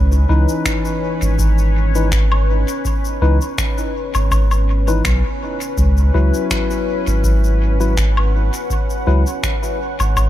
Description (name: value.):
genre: ambient dub.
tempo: 82 BPM.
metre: 4/4.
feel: swing 54% on 16ths.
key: C# minor.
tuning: A4 = 440 Hz.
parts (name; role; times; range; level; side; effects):
deep dark ambient pad; sustained chords; 0.0-10.3 s; C#4 to F#5; -24 LUFS; equal; chorus, built-in reverb.
soft dub sub bass; bass; 0.0-10.3 s; G#1 to C#2; -15 LUFS; equal; none.
electronic shaker, finger snaps and woodblock; drums; 0.1-10.3 s; none; -25 LUFS; left 2 dB; overdrive, dub echo.
barky tine electric piano; stabs; 0.3-9.2 s; E3 to B4; -23 LUFS; left 4 dB; dub echo.
electronic kick drum; drums; 0.7-10.3 s; none; -21 LUFS; equal; overdrive.
room: digital ambience.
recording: none.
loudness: -14 LUFS.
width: side -13 dB against mid.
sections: 0.0-10.3 A section.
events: none.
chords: 0.0 C#m9; 5.8 Esus2.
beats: 0.66 1.39 2.12 | 2.85 3.58 4.32 5.05 | 5.78 6.51 7.24 7.97 | 8.71 9.44 10.17.